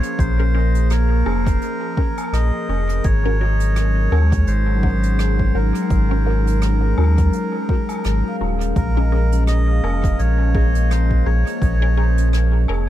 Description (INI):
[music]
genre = ambient dub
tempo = 84 BPM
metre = 4/4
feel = swing 57% on 16ths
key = Bb minor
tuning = A4 = 439 Hz
[part]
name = melodica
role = melody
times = 0.0-12.3 s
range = Bb4 to Eb5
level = -27 LUFS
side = right 1 dB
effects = analog delay
[part]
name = warbly tape-like pad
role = sustained chords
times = 0.0-12.9 s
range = F3 to Bb4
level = -26 LUFS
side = left 1 dB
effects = chorus, built-in reverb
[part]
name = vibraphone with medium hard mallets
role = arpeggios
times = 0.0-12.9 s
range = Gb3 to F5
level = -28 LUFS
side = left 1 dB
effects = analog delay
[part]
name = jazz brush drum kit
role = drums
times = 0.0-12.9 s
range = hi-hat, rim click, woodblock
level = -35 LUFS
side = equal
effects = dub echo
[part]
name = warm sub bass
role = bass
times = 0.2-12.9 s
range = Eb1 to Eb2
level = -17 LUFS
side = equal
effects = tube saturation
[part]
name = electronic kick drum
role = drums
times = 0.2-11.8 s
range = none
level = -20 LUFS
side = equal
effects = none
[part]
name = filtered dub chord stab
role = stabs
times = 0.4-12.9 s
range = Db4 to Bb4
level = -31 LUFS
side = left 2 dB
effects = phaser, dub echo
[sound]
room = little or no reverb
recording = echo-heavy mix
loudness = -16 LUFS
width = side -13 dB against mid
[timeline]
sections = 0.0-12.9 A section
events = none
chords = 0.0 Bbm7; 3.0 Ab9sus4; 8.8 Bbm7